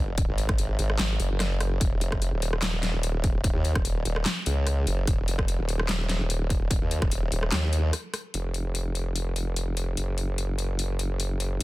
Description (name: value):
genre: heavy wobble dubstep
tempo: 147 BPM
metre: 4/4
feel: swing 53% on 16ths, half-time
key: unclear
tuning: A4 = 440 Hz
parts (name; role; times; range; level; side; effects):
- formant-sweep wobble bass; bass; 0.0-11.6 s; Eb1 to Eb2; -26 LUFS; equal; chorus, overdrive
- dubstep drum kit; drums; 0.2-11.6 s; handclaps, hi-hat, rim click, snare drum; -31 LUFS; left 1 dB; none
- electronic kick drum; drums; 0.2-7.1 s; none; -26 LUFS; equal; none
room: little or no reverb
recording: dense, heavily limited modern master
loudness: -24 LUFS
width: side -18 dB against mid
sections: 0.0-8.3 A section; 8.3-11.6 B section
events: drop 0.0-8.3; break 7.9-8.3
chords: none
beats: | 0.18 0.58 0.99 1.40 | 1.81 2.22 2.63 3.03 | 3.44 3.85 4.26 4.67 | 5.08 5.48 5.89 6.30 | 6.71 7.12 7.52 7.93 | 8.34 8.75 9.16 9.56 | 9.97 10.38 10.79 11.20 | 11.61